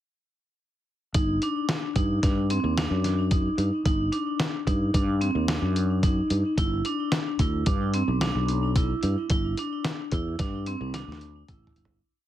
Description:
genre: progressive instrumental, band music in an uneven meter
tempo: 110 BPM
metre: 5/4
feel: straight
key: unclear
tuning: A4 = 440 Hz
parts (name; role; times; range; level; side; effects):
- vibraphone with hard mallets; arpeggios; 1.1-11.9 s; C4 to E4; -28 LUFS; equal; ping-pong delay
- sustaining fretless electric bass; bass; 1.1-12.0 s; G1 to G2; -26 LUFS; equal; none
- lo-fi sampler-style drum kit; drums; 1.1-12.0 s; hi-hat, kick drum, snare drum, toms; -27 LUFS; equal; none
room: light reverb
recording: heavily compressed radio sound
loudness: -23 LUFS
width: side -12 dB against mid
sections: 1.1-12.0 groove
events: fade-out 9.3-12.0; drum fill 10.9-12.0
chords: 1.1 Cmadd9/G (rootless); 6.6 G; 9.3 Am7/G (rootless)

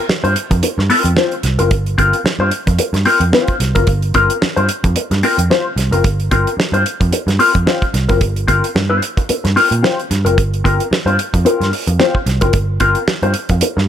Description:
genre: funk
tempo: 111 BPM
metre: 4/4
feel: swing 56% on 16ths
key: G minor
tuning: A4 = 440 Hz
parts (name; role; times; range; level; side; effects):
- mellow electric guitar; accompaniment; 0.1-13.8 s; C4 to C5; -16 LUFS; left 3 dB; wah
- vintage muted picked electric bass; bass; 0.1-13.9 s; F#1 to Bb2; -16 LUFS; right 1 dB; none
- damped 70s drum kit; drums; 0.1-13.8 s; hi-hat, kick drum, snare drum; -18 LUFS; right 2 dB; none
room: light reverb, small room ambience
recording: none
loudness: -12 LUFS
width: side -10 dB against mid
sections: 0.0-13.9 A section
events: none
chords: 0.0 Gm7

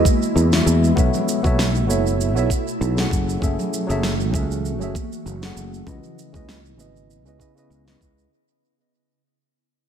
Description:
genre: sunset chillout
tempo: 98 BPM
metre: 4/4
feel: swing 55% on 16ths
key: unclear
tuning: A4 = 440 Hz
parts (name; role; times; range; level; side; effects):
- tine electric piano; accompaniment; 0.0-8.3 s; C#3 to F#5; -24 LUFS; moving between left 5 dB and right 6 dB; auto-pan, tape echo
- ethereal airy pad; sustained chords; 0.0-8.3 s; B2 to F#4; -27 LUFS; equal; ensemble chorus, built-in reverb, phaser
- electronic kick drum; drums; 0.1-8.1 s; none; -21 LUFS; equal; none
- electronic shaker and snare drum; drums; 0.1-8.3 s; none; -27 LUFS; right 1 dB; tape echo
- congas; percussion; 0.1-6.8 s; none; -30 LUFS; right 2 dB; none
- sustaining fretless electric bass; bass; 0.4-8.3 s; F#1 to E2; -21 LUFS; equal; none
room: light reverb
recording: echo-heavy mix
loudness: -18 LUFS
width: side -8 dB against mid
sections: 0.0-8.3 A section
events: fade-out 0.0-8.3; filter sweep on ambient pad 0.0-8.3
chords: 0.0 E; 1.0 B7sus4; 3.1 F#m7; 5.9 C#m7

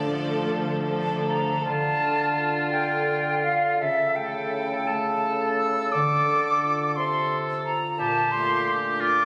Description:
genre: classical, slow romantic movement for symphony orchestra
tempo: 57 BPM (dotted quarters)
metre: 6/8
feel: uneven beats, rubato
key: D minor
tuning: A4 = 440 Hz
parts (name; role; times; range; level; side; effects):
- clear studio violin section; melody; 0.0-0.5 s; D5; -42 LUFS; equal; none
- rich chamber violin section; second line; 0.0-1.6 s; D4 to A4; -34 LUFS; equal; none
- rich chamber viola section; accompaniment; 0.0-1.6 s; F3 to A3; -31 LUFS; equal; none
- concert harp; arpeggios; 0.0-9.2 s; Bb2 to D5; -34 LUFS; equal; none
- rich studio cello section; bass; 0.0-1.5 s; D3; -35 LUFS; equal; none
- bright concert flute; second line; 1.3-9.2 s; E5 to E6; -27 LUFS; equal; none
- bright oboe; second line; 1.7-9.2 s; F4 to A4; -30 LUFS; equal; none
- mellow bassoon; accompaniment; 1.7-9.2 s; Bb2 to D3; -33 LUFS; equal; none
room: moderate scoring stage reverb, RT60 2.1 s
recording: recorded on a phone in the room, studio ambience, compression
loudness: -24 LUFS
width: mono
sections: 0.0-1.6 A section; 1.6-9.2 B section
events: none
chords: 0.0 Dm; 3.8 A7/C#; 5.9 Dm; 8.0 Bbmaj7

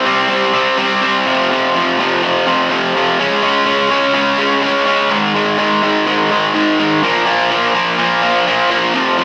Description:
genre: rock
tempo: 125 BPM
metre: 4/4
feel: straight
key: unclear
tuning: A4 = 440 Hz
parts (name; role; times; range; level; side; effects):
- cranked stack guitar; solo; 0.0-9.2 s; F2 to Db4; -14 LUFS; equal; overdrive, slapback echo
room: light reverb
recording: live gig heard through the venue's PA, club reverb, small speaker sound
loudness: -14 LUFS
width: mono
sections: 0.0-1.3 A section; 1.3-9.2 B section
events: none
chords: 0.0 C5; 1.3 F5; 3.2 Db5; 5.1 Ab5; 7.0 Bb5

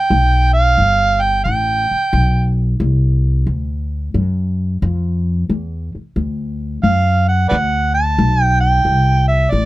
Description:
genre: acoustic country blues, solo or duo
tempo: 89 BPM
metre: 4/4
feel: swing 67% on 8ths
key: unclear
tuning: A4 = 440 Hz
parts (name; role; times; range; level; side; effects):
- overdriven harmonica; melody; 0.0-2.5, 6.8-9.7 s; B4 to A5; -15 LUFS; right 3 dB; none
- upright bass; bass; 0.1-9.7 s; G1 to F#2; -15 LUFS; left 1 dB; none
room: little or no reverb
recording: close, detailed microphones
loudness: -14 LUFS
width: side -17 dB against mid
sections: 0.0-9.7 A section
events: none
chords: 0.0 N.C.; 0.8 G; 6.2 D; 8.9 C

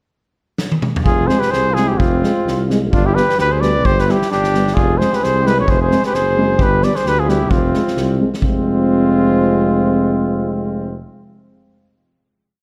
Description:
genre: balkan folk, Balkan brass band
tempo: 131 BPM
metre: 2/4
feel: swing 55% on 16ths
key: F hungarian minor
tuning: A4 = 439 Hz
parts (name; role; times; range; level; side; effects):
- natural country drum kit; percussion; 0.6-8.6 s; kick drum, snare drum, toms; -22 LUFS; equal; none
- clear flugelhorn; second line; 1.0-11.0 s; C4 to B4; -27 LUFS; equal; slapback echo
- mellow tuba; bass; 1.0-11.0 s; F1 to D2; -22 LUFS; equal; none
- mellow trumpet; melody; 1.1-11.0 s; F4 to D5; -21 LUFS; equal; none
- dark euphonium; accompaniment; 1.3-11.0 s; B3 to C4; -24 LUFS; equal; none
- mellow euphonium; accompaniment; 1.3-11.0 s; G3 to Ab3; -24 LUFS; equal; none
room: moderate concert hall reverb, RT60 1.8 s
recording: none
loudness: -16 LUFS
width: mono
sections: 0.1-1.1 pickup bar; 1.1-8.4 A section; 8.4-10.2 final chord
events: drum fill 0.6-1.1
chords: 0.1 N.C.; 1.1 Fm; 2.9 G; 4.8 Fm; 6.6 G; 7.5 Fm

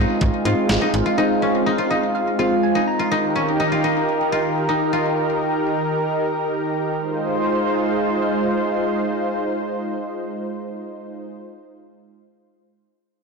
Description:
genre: synth-pop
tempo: 124 BPM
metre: 4/4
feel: straight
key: Ab major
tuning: A4 = 440 Hz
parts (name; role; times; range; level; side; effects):
- lush unison pad; sustained chords; 0.0-11.3 s; Eb3 to C5; -21 LUFS; right 1 dB; chorus
- koto; arpeggios; 0.0-7.1 s; Db4 to F4; -23 LUFS; left 3 dB; ping-pong delay
- slap-like FM bass; bass; 0.0-1.0 s; Ab1 to Ab2; -22 LUFS; right 1 dB; transformer saturation
- clean 12-bit digital drum machine; drums; 0.2-1.1 s; hi-hat, kick drum, snare drum; -23 LUFS; equal; none
- soft electric-piano-like synth keys; accompaniment; 0.5-3.1 s; Ab3 to Bb5; -22 LUFS; equal; chorus
room: wet plate reverb, RT60 2.0 s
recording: blown-out, overdriven recording, overdrive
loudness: -18 LUFS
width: side -4 dB against mid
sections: 0.0-7.0 A section; 7.0-10.9 B section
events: synth keys fill 1.7-3.1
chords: 0.0 Ab6; 3.1 Eb; 7.0 Ab6

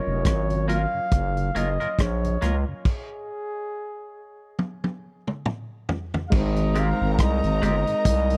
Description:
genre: lovers rock reggae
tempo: 69 BPM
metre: 4/4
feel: swing 58% on 16ths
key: Ab major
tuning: A4 = 440 Hz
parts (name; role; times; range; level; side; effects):
- breathy flugelhorn; melody; 0.0-8.4 s; Ab4 to F5; -31 LUFS; equal; tape echo
- tine electric piano; accompaniment; 0.0-8.4 s; Gb3 to C5; -34 LUFS; equal; overdrive, slapback echo
- mellow tonewheel organ; accompaniment; 0.1-8.4 s; Gb2 to G4; -34 LUFS; equal; slow rotary speaker
- growling FM bass; bass; 0.1-8.4 s; F1 to Db2; -26 LUFS; equal; none
- vintage drum kit; drums; 0.2-8.4 s; crash cymbal, hi-hat, kick drum, rim click, toms; -26 LUFS; equal; none
- twangy electric guitar; stabs; 0.7-7.8 s; Eb3 to Bb4; -35 LUFS; equal; spring reverb
- clear horn section; second line; 6.3-8.4 s; Ab3 to Eb4; -36 LUFS; equal; none
- warm studio string section; second line; 6.3-8.4 s; Bb4 to Bb5; -38 LUFS; equal; none
room: studio ambience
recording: dry, close 1970s-style studio recording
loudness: -25 LUFS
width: mono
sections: 0.0-6.3 A section; 6.3-8.4 B section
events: stop 2.9-6.3; drum fill 4.6-6.3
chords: 0.0 Gbmaj7; 2.9 N.C.; 6.3 Abmaj7

